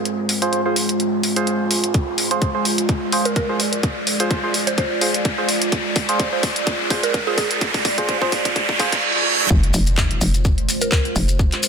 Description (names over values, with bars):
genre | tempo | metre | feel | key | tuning
bass house | 127 BPM | 4/4 | swing 55% on 16ths | F dorian | A4 = 443 Hz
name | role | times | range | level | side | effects
deep dark ambient pad | sustained chords | 0.0-11.7 s | Ab3 to D5 | -24 LUFS | right 1 dB | chorus, built-in reverb, sidechain pumping
riser, reverse cymbal and impact | sound effects | 0.0-11.4 s | none | -24 LUFS | right 1 dB | none
garage drum kit | drums | 0.1-11.7 s | handclaps, hi-hat | -22 LUFS | equal | none
percussive organ stab | stabs | 0.4-8.9 s | F4 to C5 | -24 LUFS | right 2 dB | chorus, phaser, sidechain pumping, ping-pong delay
electronic kick drum | drums | 1.9-11.5 s | none | -20 LUFS | equal | none
mallet-like synth pluck | melody | 3.3-7.5, 10.8-11.0 s | Ab4 to C5 | -27 LUFS | right 2 dB | chorus, phaser, ping-pong delay
hollow knocking FM bass | bass | 9.5-11.5 s | F1 | -19 LUFS | equal | tube saturation, sidechain pumping
maracas | percussion | 9.5-11.7 s | none | -26 LUFS | left 4 dB | none
room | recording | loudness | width
moderate digital room reverb, RT60 1.1 s, digital ambience | dense, heavily limited modern master, high-pass filter | -17 LUFS | side -6 dB against mid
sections
0.0-9.5 A section; 9.5-11.7 B section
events
build-up 0.0-9.5; riser 0.0-9.0; filter sweep 0.0-9.5; drum fill 1.9-9.0; reverse cymbal 8.6-9.5; drop 9.5-11.7; impact 9.5-11.4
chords
0.0 Fm